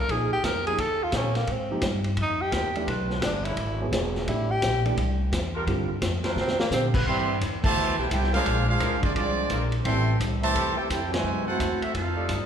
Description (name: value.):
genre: jazz, big band swing.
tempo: 172 BPM.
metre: 4/4.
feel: swing 65% on 8ths.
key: C major from 7.1 s.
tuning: A4 = 440 Hz.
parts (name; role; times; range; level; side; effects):
breathy tenor saxophone; melody; 0.0-6.9 s; Bb3 to Bb4; -28 LUFS; equal; none.
upright bass; bass; 0.0-12.5 s; E1 to C3; -28 LUFS; equal; none.
dark concert grand piano; accompaniment; 0.1-6.9 s; D3 to Ab4; -33 LUFS; right 2 dB; none.
vintage drum kit; drums; 0.1-12.4 s; crash cymbal, hi-hat, kick drum, ride cymbal, snare drum; -30 LUFS; left 1 dB; none.
dark saxophone section; sustained chords; 1.1-12.5 s; F3 to D5; -35 LUFS; equal; none.
bright trumpet section; melody; 7.1-12.5 s; C4 to C6; -27 LUFS; right 2 dB; none.
warm trombone section; second line; 7.1-12.5 s; B2 to G4; -30 LUFS; right 1 dB; none.
room: wet scoring stage reverb, RT60 1.6 s.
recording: recorded in a church or concert hall.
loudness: -23 LUFS.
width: side -8 dB against mid.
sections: 0.0-7.1 A section; 7.1-12.5 B section.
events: tenor saxophone solo 0.0-7.1; drum fill 6.4-6.7; band accent 7.6, 11.1.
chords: 0.1 Bb5; 0.8 Eb9; 1.5 Abmaj9; 2.9 Bm7b5; 3.6 E; 4.3 Am7; 5.7 Gm7; 6.4 C9; 7.1 Cmaj7; 8.5 Bb9; 9.9 Am7; 11.2 F#m7b5; 11.9 F13.